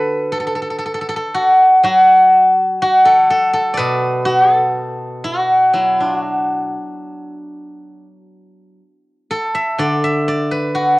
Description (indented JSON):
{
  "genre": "chinese traditional, Chinese solo plucked strings",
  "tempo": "60 BPM",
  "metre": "2/4",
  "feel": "uneven beats, rubato",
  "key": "D gong mode",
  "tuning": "A4 = 444 Hz",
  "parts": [
    { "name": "steel-string zither", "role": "solo", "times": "0.0-11.0 s", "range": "B2 to E5", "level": "-13 LUFS", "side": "equal", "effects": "cassette tape" }
  ],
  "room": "moderate spring reverb, RT60 2.4 s",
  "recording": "home recording on cassette",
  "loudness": "-12 LUFS",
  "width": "side -23 dB against mid",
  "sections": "0.0-11.0 A section",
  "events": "none",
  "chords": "none",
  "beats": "0.85 | 1.86 2.84 | 3.81 4.78 | 5.75 6.75 | 7.79 8.80 | 9.80 10.77"
}